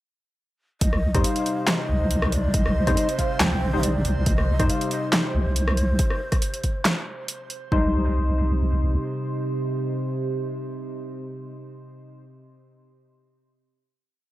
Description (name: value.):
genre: deep dubstep.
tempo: 139 BPM.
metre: 4/4.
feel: swing 54% on 16ths, half-time.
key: C minor.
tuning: A4 = 440 Hz.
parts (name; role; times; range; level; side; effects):
breathy low ney; melody; 0.8-7.2 s; C5 to G5; -32 LUFS; equal; dub echo.
overtone-sweeping drone; sustained chords; 1.4-12.0 s; C3; -32 LUFS; right 1 dB; chorus, built-in reverb.
deep soft wobble bass; bass; 0.8-9.0 s; Bb1 to F2; -22 LUFS; equal; chorus.
dubstep drum kit; drums; 0.8-7.6 s; handclaps, hi-hat, rim click, snare drum; -25 LUFS; equal; overdrive.
electronic kick drum; drums; 0.8-7.8 s; none; -24 LUFS; equal; none.
backwards swelling texture; texture; 1.8-6.0 s; C5; -36 LUFS; right 5 dB; built-in reverb.
percussive organ stab; stabs; 1.1-12.2 s; G3 to C5; -29 LUFS; left 2 dB; analog chorus, dub echo.
room: light reverb.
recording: dry, gritty hardware recording.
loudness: -21 LUFS.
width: side -15 dB against mid.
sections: 0.8-7.7 drop; 7.7-11.2 final chord.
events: drop 0.8-7.7.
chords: 0.8 Cm.